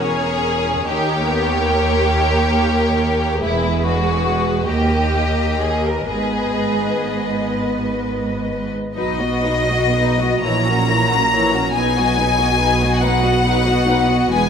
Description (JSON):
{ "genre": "classical, slow romantic movement for string orchestra", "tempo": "39-47 BPM (dotted quarters)", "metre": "6/8", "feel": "rubato", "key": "G# minor, B major from 9.0 s", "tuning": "A4 = 440 Hz", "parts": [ { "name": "clear studio violin section", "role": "melody", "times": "0.0-14.5 s", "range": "B4 to A#5", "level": "-21 LUFS", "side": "left 4 dB", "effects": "none" }, { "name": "rich studio violin section", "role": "second line", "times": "0.0-14.5 s", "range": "D#4 to D#5", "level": "-22 LUFS", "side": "left 2 dB", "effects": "none" }, { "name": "rich studio viola section", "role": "accompaniment", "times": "0.0-14.5 s", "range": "E3 to B4", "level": "-22 LUFS", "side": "right 1 dB", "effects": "none" }, { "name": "rich studio cello section", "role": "bass", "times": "0.0-14.5 s", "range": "D#2 to B2", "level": "-23 LUFS", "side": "right 2 dB", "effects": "none" }, { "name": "rich studio double bass section", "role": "bass", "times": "0.0-14.5 s", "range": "E1 to D#2", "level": "-24 LUFS", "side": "right 2 dB", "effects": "none" } ], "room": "wet scoring stage reverb, RT60 1.9 s", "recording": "none", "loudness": "-15 LUFS", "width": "side -7 dB against mid", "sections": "0.0-9.0 A section; 9.0-14.5 B section", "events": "none", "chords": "0.0 N.C.; 0.8 D#7; 3.4 E; 4.7 D#; 6.1 G#m; 9.0 B; 10.4 F#7/A#; 11.7 B" }